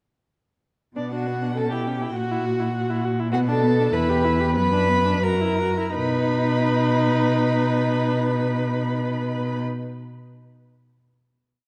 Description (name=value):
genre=quick classical-period movement for string quartet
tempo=82-102 BPM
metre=2/4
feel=rubato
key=unclear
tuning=A4 = 440 Hz
part: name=rich violin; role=melody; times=1.0-9.6 s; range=D5 to B5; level=-32 LUFS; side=equal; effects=none
part: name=dark violin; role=second line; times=1.0-9.6 s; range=D4 to B4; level=-28 LUFS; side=equal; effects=none
part: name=rich viola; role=accompaniment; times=1.0-9.6 s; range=B3 to G4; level=-29 LUFS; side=equal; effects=none
part: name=warm cello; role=bass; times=1.0-9.6 s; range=E2 to B2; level=-26 LUFS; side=equal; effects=none
room=moderate concert hall reverb, RT60 1.9 s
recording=dark, warm production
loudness=-22 LUFS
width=mono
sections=1.0-6.0 A section; 6.0-8.9 final chord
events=slowing down 2.7-6.0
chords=1.0 Bm; 1.6 C#m7b5/B; 2.2 F#7/A#; 3.3 Bm; 3.9 Em; 4.6 Bm/F#; 5.2 F#7; 6.0 B